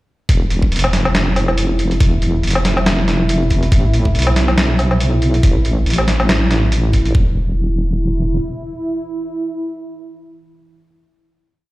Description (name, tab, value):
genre	deep dubstep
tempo	140 BPM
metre	4/4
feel	swing 56% on 16ths, half-time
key	unclear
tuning	A4 = 440 Hz
part	dark analog pad	sustained chords	0.7-11.3 s	E4	-24 LUFS	right 1 dB	chorus
part	deep soft wobble bass	bass	0.3-8.4 s	E1 to B1	-16 LUFS	equal	chorus
part	electronic kick drum	drums	0.3-7.2 s	none	-14 LUFS	equal	none
part	trip hop sampler-style drum kit	drums	0.3-7.1 s	hi-hat, snare drum, woodblock	-18 LUFS	equal	none
room	digital ambience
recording	played on a big sound system in a bare room, large studio reverb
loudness	-13 LUFS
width	side -18 dB against mid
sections	0.3-7.1 drop; 7.1-10.6 final note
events	drop 0.3-7.1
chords	0.3 N.C.; 3.7 A5; 7.1 N.C.